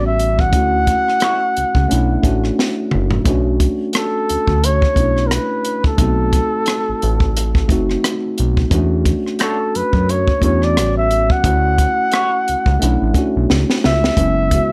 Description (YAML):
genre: R&B, neo-soul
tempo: 88 BPM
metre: 4/4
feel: swing 57% on 16ths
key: B minor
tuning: A4 = 440 Hz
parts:
  - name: trumpet with bucket mute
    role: melody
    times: 0.0-14.7 s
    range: A4 to F#5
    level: -21 LUFS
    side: equal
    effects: none
  - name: tine electric piano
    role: accompaniment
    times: 0.0-14.7 s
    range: C#3 to F#4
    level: -23 LUFS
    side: equal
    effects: overdrive
  - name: fat analog bass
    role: bass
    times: 0.0-14.6 s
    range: F#1 to F#2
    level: -20 LUFS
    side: equal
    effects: none
  - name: compact cocktail drum kit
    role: drums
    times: 0.2-14.7 s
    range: hi-hat, kick drum, rim click, snare drum, toms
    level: -20 LUFS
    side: equal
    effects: none
  - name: electric guitar through a small old amp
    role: second line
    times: 1.2-1.4, 9.4-12.3 s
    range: A3 to C#5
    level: -26 LUFS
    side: equal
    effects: wah
room: light reverb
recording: none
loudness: -16 LUFS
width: mono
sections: 0.0-3.3 A section; 3.3-14.2 A section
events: drum fill 2.6-3.3, 13.5-14.2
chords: 0.0 A13; 0.5 Dmaj9; 1.9 Bm11; 3.3 Bm7; 6.0 B7b9; 8.7 E13sus4; 10.8 A13; 11.4 Dmaj9; 12.8 Bm11; 14.2 F#9sus4